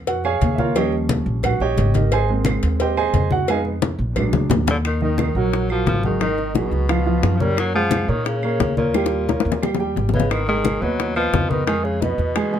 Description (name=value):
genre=Afro-Cuban jazz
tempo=176 BPM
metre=4/4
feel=straight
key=Eb minor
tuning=A4 = 439 Hz
part: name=upright bass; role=bass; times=0.0-12.6 s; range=Ab1 to Bb2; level=-22 LUFS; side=equal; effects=none
part: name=warm grand piano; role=accompaniment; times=0.1-12.6 s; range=Eb3 to Ab5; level=-22 LUFS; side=right 4 dB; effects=none
part: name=congas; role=percussion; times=0.1-12.6 s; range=none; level=-25 LUFS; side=left 3 dB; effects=none
part: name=cowbell and bongos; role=percussion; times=0.1-12.5 s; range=none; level=-25 LUFS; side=left 7 dB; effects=none
part: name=claves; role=percussion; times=0.2-12.5 s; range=none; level=-35 LUFS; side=right 6 dB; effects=none
part: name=warm tenor saxophone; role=melody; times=4.7-12.6 s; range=Bb2 to G3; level=-24 LUFS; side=left 3 dB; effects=none
room=moderate club reverb, RT60 0.6 s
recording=dark, warm production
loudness=-17 LUFS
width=side -9 dB against mid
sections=0.0-4.8 A section; 4.8-12.6 B section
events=grand piano solo 0.0-4.8; drum fill 3.8-4.8, 8.9-10.3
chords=0.0 Bbm7; 0.8 Eb9; 2.1 Abmaj7; 3.5 Fm7b5; 4.2 Bb7b13; 4.8 Ebm; 6.2 Abm7; 6.9 Db7; 7.6 Gb69; 8.9 Eb7; 10.3 Abm7; 11.7 Fm7b5